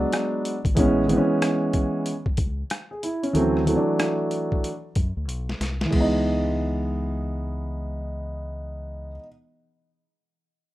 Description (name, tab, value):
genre	hip hop, jazz-hop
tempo	93 BPM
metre	4/4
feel	swing 63% on 16ths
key	C# minor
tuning	A4 = 440 Hz
part	dark baby grand piano	accompaniment	0.0-9.3 s	E3 to G#4	-23 LUFS	right 1 dB	plate reverb
part	deep dub fingered electric bass	bass	0.0-9.2 s	G#1 to F#2	-29 LUFS	equal	none
part	boom bap sampler-style drum kit	drums	0.1-6.1 s	crash cymbal, hi-hat, kick drum, rim click, snare drum	-26 LUFS	left 1 dB	overdrive
room	wet small room reverb, RT60 0.5 s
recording	rough home demo mix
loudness	-22 LUFS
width	side -16 dB against mid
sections	0.0-5.9 A section; 5.9-8.5 B section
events	drum fill 5.3-5.9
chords	0.0 E7 (rootless); 0.8 Amaj9; 3.3 D9; 5.9 C#m9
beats	0.12 | 0.77 1.41 2.06 2.70 | 3.35 3.99 4.64 5.28 | 5.93 6.57 7.22 7.86